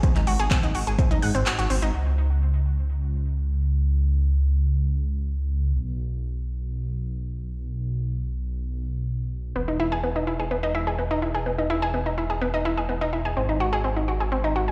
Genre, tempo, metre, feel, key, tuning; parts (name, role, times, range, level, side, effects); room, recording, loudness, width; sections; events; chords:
progressive house; 126 BPM; 4/4; straight; A4 = 441 Hz
analog pluck; arpeggios; 0.0-1.9, 9.6-14.7 s; B3 to F#5; -28 LUFS; equal; chorus, sidechain pumping, tape echo
deep house drum kit; drums; 0.0-1.9 s; handclaps, hi-hat; -33 LUFS; equal
electronic kick drum; drums; 0.0-1.1 s; -23 LUFS; equal
dark detuned saw bass; bass; 0.2-14.7 s; E1 to G#2; -27 LUFS; equal; sidechain pumping
light reverb; played on a big sound system in a bare room, stone room reverb; -25 LUFS; mono
0.0-1.9 A section; 1.9-14.7 B section
kick drops out 1.5-1.9; band accent 1.5
0.0 G#7; 1.9 N.C.; 9.6 Emaj7; 13.4 G#7(no3)